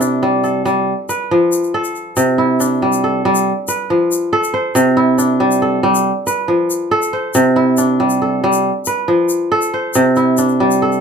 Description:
west african traditional, West African string and xylophone music; 93 BPM (dotted quarters); 12/8; straight; C major; A4 = 435 Hz
kora; arpeggios; 0.0-11.0 s; C3 to C5; -13 LUFS; equal
egg shaker; percussion; 0.0-11.0 s; -24 LUFS; left 7 dB
wet studio ambience, RT60 0.5 s; minimal, uncompressed stereo recording; -13 LUFS; side -6 dB against mid
0.0-11.0 A section
0.0 C; 0.9 F; 2.2 C; 3.5 F; 4.8 C; 6.1 F; 7.3 C; 8.6 F; 9.9 C
0.22 0.87 1.52 | 2.16 2.81 3.46 4.11 | 4.75 5.40 6.05 6.70 | 7.35 8.00 8.64 9.29 | 9.94 10.59

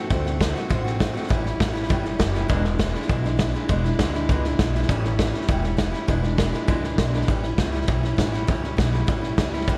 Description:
rockabilly; 201 BPM; 4/4; straight; A mixolydian; A4 = 439 Hz
picked acoustic archtop guitar; accompaniment; 0.0-9.8 s; E2 to F#4; -30 LUFS; equal
upright bass; bass; 0.1-9.8 s; E1 to E2; -28 LUFS; equal
raw garage drum kit; drums; 0.1-9.7 s; hi-hat, kick drum, snare drum; -25 LUFS; equal
light reverb; -23 LUFS; mono
0.0-7.3 A section; 7.3-9.8 B section
0.0 D7; 1.3 A7; 2.5 E7; 4.9 A7; 6.1 E7; 7.3 A7
| 0.11 0.41 0.71 1.01 | 1.31 1.61 1.91 2.21 | 2.50 2.80 3.10 3.40 | 3.70 4.00 4.30 4.59 | 4.89 5.19 5.49 5.79 | 6.09 6.38 6.68 6.98 | 7.28 7.58 7.88 8.18 | 8.48 8.78 9.07 9.37 | 9.67

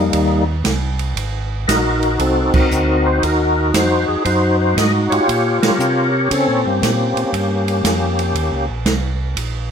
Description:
soul jazz organ trio; 117 BPM; 4/4; swing 67% on 8ths; Eb mixolydian; A4 = 440 Hz
percussive tonewheel organ; melody; 0.0-8.7 s; G3 to Eb5; -16 LUFS; left 2 dB; slow rotary speaker, overdrive, chorus vibrato, plate reverb
mellow tonewheel organ; bass; 0.0-9.7 s; Ab1 to Db3; -20 LUFS; right 1 dB; overdrive, chorus vibrato, slow rotary speaker
open jazz drum kit; drums; 0.1-9.5 s; crash cymbal, hi-hat, kick drum, ride cymbal, snare drum; -22 LUFS; right 3 dB
moderate small room reverb, RT60 0.6 s; -14 LUFS; side -7 dB against mid
0.0-9.7 A section
band accent 2.5, 5.5
0.0 Eb69; 1.2 Ab13; 5.3 Eb13 (rootless)
0.13 0.65 | 1.16 1.68 2.19 2.71 | 3.22 3.74 4.25 4.76 | 5.28 5.79 6.30 6.82 | 7.33 7.84 8.35 8.86 | 9.37

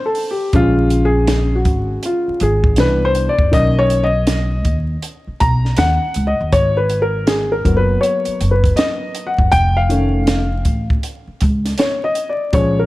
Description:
hip hop, jazz-hop; 80 BPM; 4/4; swing 63% on 16ths; A4 = 440 Hz
dark upright piano; accompaniment; 0.0-12.9 s; C#3 to A#5; -17 LUFS; left 1 dB
compact cocktail drum kit; drums; 0.1-12.8 s; hi-hat, kick drum, snare drum; -18 LUFS; equal
upright bass; bass; 0.5-12.9 s; F1 to D#2; -17 LUFS; equal
light reverb; vinyl crackle; -14 LUFS; side -18 dB against mid
0.0-12.9 A section
upright piano solo 0.0-12.9
0.0 N.C.; 0.5 A#m7; 2.8 Cmaj7; 3.5 Bmaj7; 6.5 G#m9; 9.5 F7b13
| 0.53 1.28 2.03 2.78 | 3.53 4.28 5.03 5.78 | 6.53 7.28 8.03 8.78 | 9.53 10.28 11.03 11.78 | 12.53

